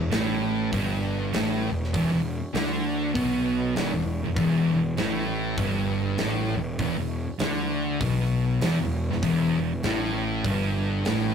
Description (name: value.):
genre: stoner and doom metal.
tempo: 99 BPM.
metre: 4/4.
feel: swing 61% on 8ths.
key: E minor.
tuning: A4 = 439 Hz.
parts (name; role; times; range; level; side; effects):
thick fuzz guitar; riff; 0.0-11.3 s; E2 to D3; -28 LUFS; left 6 dB; distortion.
thick fuzz guitar; riff; 0.0-11.3 s; E2 to D3; -27 LUFS; right 4 dB; distortion.
fuzz picked electric bass; bass; 0.0-11.3 s; E1 to D2; -31 LUFS; equal; overdrive.
big rock drum kit; drums; 0.1-11.2 s; hi-hat, kick drum, snare drum; -32 LUFS; equal; none.
room: moderate small room reverb, RT60 0.6 s.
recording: rough rehearsal-room recording, tube saturation.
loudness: -23 LUFS.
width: side -7 dB against mid.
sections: 0.0-11.3 A section.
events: none.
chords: 0.0 Em.